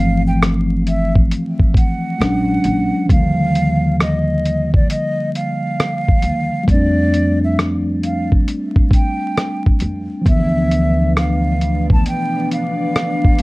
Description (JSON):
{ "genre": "lo-fi hip hop", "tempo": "67 BPM", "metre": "4/4", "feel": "swing 66% on 16ths", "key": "D dorian", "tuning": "A4 = 440 Hz", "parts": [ { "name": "breathy hollow jazz flute", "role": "melody", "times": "0.0-13.4 s", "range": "D5 to A5", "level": "-23 LUFS", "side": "right 1 dB", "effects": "none" }, { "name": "mellow tine electric piano", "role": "accompaniment", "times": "0.0-13.4 s", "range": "D3 to D4", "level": "-18 LUFS", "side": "equal", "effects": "medium stereo tremolo" }, { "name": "upright bass", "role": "bass", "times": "0.0-13.4 s", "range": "G1 to F2", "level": "-19 LUFS", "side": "equal", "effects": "none" }, { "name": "lo-fi sampler-style drum kit", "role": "drums", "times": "0.4-13.4 s", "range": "hi-hat, kick drum, rim click", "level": "-14 LUFS", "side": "equal", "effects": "none" }, { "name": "string machine, full ensemble", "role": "sustained chords", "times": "10.3-13.4 s", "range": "B3 to D5", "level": "-25 LUFS", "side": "left 1 dB", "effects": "ensemble chorus" } ], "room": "light reverb", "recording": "dark, warm production, vinyl crackle", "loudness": "-14 LUFS", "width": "side -21 dB against mid", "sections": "0.0-13.4 A section", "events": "none", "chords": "0.0 G13sus4; 2.2 Bb7alt; 3.1 Ebmaj9; 6.7 F69; 10.3 Dm69" }